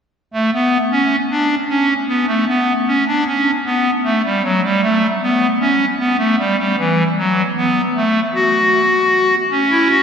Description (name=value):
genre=classical, baroque-style 4-part fugue for pipe organ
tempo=51 BPM (dotted quarters)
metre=12/8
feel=straight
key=unclear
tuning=A4 = 441 Hz
part: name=pipe organ, clarinet reed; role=solo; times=0.3-10.0 s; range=E3 to F#4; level=-13 LUFS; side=equal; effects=none
room=wet cathedral reverb, RT60 4.9 s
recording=heard from further back in the room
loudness=-13 LUFS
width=side -7 dB against mid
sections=0.1-10.0 A section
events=none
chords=0.1 N.C.; 9.5 A/C# (rootless)